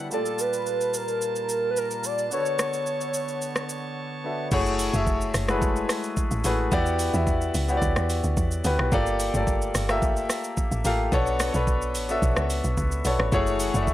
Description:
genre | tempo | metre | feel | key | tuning
amapiano | 109 BPM | 4/4 | straight | F# phrygian | A4 = 441 Hz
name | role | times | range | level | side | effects
warm grand piano | accompaniment | 0.0-13.9 s | Bb2 to B5 | -26 LUFS | left 2 dB | none
pipe organ, cornet | sustained chords | 0.0-4.5, 13.3-13.9 s | Bb2 to A5 | -34 LUFS | right 2 dB | sidechain pumping
warm velvety synth lead | melody | 0.1-3.9 s | A4 to D5 | -26 LUFS | right 1 dB | chorus, analog delay
afro-pop drum kit | drums | 0.1-13.9 s | crash cymbal, hi-hat, kick drum, rim click, shaker | -28 LUFS | equal | overdrive
deep log drum bass | bass | 4.5-13.9 s | F#1 to E2 | -26 LUFS | equal | none
room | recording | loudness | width
digital ambience | dry, gritty hardware recording | -22 LUFS | side -14 dB against mid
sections
0.0-4.5 A section; 4.5-13.9 B section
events
drop 4.5-13.9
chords
0.1 Gm9; 2.3 Bm9; 4.5 F#m9; 6.7 Em9; 8.9 Gm9; 11.1 Bm9; 13.3 F#m9

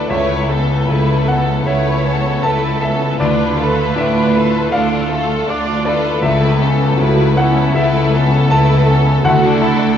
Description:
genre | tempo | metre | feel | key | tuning
cinematic, emotional film score for orchestra | 79 BPM | 4/4 | rubato | A major | A4 = 442 Hz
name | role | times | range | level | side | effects
rich studio violin section | melody | 0.0-10.0 s | F4 to B4 | -24 LUFS | left 4 dB | none
clear studio violin section | second line | 0.0-10.0 s | A3 to F4 | -21 LUFS | left 2 dB | none
bright concert grand piano | accompaniment | 0.0-10.0 s | C#2 to A5 | -18 LUFS | left 1 dB | none
rich studio viola section | accompaniment | 0.0-10.0 s | E4 to D5 | -21 LUFS | right 1 dB | none
concert harp | arpeggios | 0.0-10.0 s | C#3 to A4 | -19 LUFS | left 3 dB | none
rich symphonic cello section | bass | 0.1-9.9 s | C#2 to D2 | -19 LUFS | right 5 dB | none
room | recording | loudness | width
wet scoring stage reverb, RT60 1.7 s | nothing above 7.6 kHz | -12 LUFS | side -9 dB against mid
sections
0.0-10.0 A section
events
none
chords
0.1 Aadd9/C#; 3.2 Dm; 6.2 Aadd9/C#; 9.2 Dadd9

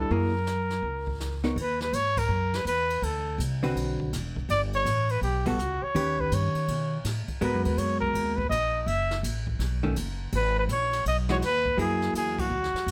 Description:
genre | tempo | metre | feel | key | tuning
jazz, small-group swing and bop | 164 BPM | 4/4 | swing 64% on 8ths | B major | A4 = 441 Hz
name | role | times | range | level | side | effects
breathy trumpet | melody | 0.0-12.9 s | F#4 to E5 | -30 LUFS | equal | none
vintage hollow-body jazz guitar | accompaniment | 0.0-12.5 s | D3 to C#5 | -31 LUFS | equal | none
upright bass | bass | 0.0-12.9 s | E1 to B2 | -32 LUFS | equal | none
jazz brush drum kit | drums | 0.1-12.9 s | brushed snare drum, crash cymbal, hi-hat, kick drum, ride cymbal, snare drum | -40 LUFS | equal | none
room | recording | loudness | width
light reverb | none | -27 LUFS | mono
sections
0.0-1.6 A section; 1.6-12.9 B section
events
band accent 2.1, 5.4, 12.3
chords
0.1 F#9; 1.6 Bmaj7; 3.0 D13; 4.5 Gmaj9; 6.0 D#aug7; 7.4 G#m9; 8.9 F#m7; 9.6 B9; 10.3 Emaj7 (rootless); 11.8 F#9

